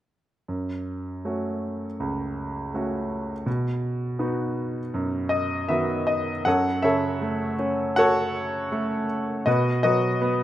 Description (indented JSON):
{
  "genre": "classical, lyrical solo piano",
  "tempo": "80 BPM",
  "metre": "4/4",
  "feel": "rubato",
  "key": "F# minor",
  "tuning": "A4 = 440 Hz",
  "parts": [
    { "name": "clear baby grand piano", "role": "solo", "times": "0.5-10.4 s", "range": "C#2 to F#5", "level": "-23 LUFS", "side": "equal", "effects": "none" }
  ],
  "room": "moderate recital hall reverb, RT60 1.6 s",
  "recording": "none",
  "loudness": "-23 LUFS",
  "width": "side -13 dB against mid",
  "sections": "0.5-6.5 A section; 6.5-10.4 B section",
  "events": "none",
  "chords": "0.5 F#m; 3.5 B; 6.5 F#m; 9.5 B",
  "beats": "| 0.49 1.25 2.01 2.74 | 3.47 4.20 4.94 5.70 | 6.46 7.22 7.97 8.72 | 9.47 10.21"
}